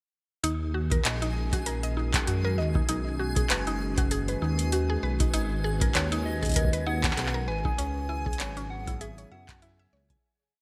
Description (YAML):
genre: IDM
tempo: 98 BPM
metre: 4/4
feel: swing 56% on 16ths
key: Eb phrygian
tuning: A4 = 444 Hz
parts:
  - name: warbly tape-like pad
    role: sustained chords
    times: 1.2-10.2 s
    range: Db3 to B4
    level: -39 LUFS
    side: equal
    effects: chorus, built-in reverb, vintage 12-bit sampler grit
  - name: mallet-like synth pluck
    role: arpeggios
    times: 0.4-10.2 s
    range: Db4 to Ab5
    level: -36 LUFS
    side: equal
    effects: chorus, phaser, cassette tape, delay
  - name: dark detuned saw bass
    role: bass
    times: 0.4-10.2 s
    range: F#1 to Gb2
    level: -32 LUFS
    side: equal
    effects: none
  - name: booming analog drum machine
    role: drums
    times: 0.4-10.2 s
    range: handclaps, hi-hat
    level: -33 LUFS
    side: equal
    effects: none
  - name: backwards swelling texture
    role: texture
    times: 0.7-10.2 s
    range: Ab4 to Ab5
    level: -43 LUFS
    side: equal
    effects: built-in reverb, lush chorus
  - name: electronic kick drum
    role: drums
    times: 0.9-10.2 s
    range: none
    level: -31 LUFS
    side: equal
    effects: none
  - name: soft struck synth lead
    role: melody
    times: 6.0-10.1 s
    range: Db5 to Ab5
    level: -38 LUFS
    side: equal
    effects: chorus
room: light reverb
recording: bright 1980s-style digital production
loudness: -28 LUFS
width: mono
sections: 0.4-10.2 groove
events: fade-out 7.0-10.2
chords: 0.4 Ebm; 2.9 B6; 5.3 Abmadd9; 7.8 Dbm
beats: | 0.44 1.05 1.66 2.27 | 2.89 3.50 4.11 4.72 | 5.34 5.95 6.56 7.17 | 7.79 8.40 9.01 9.62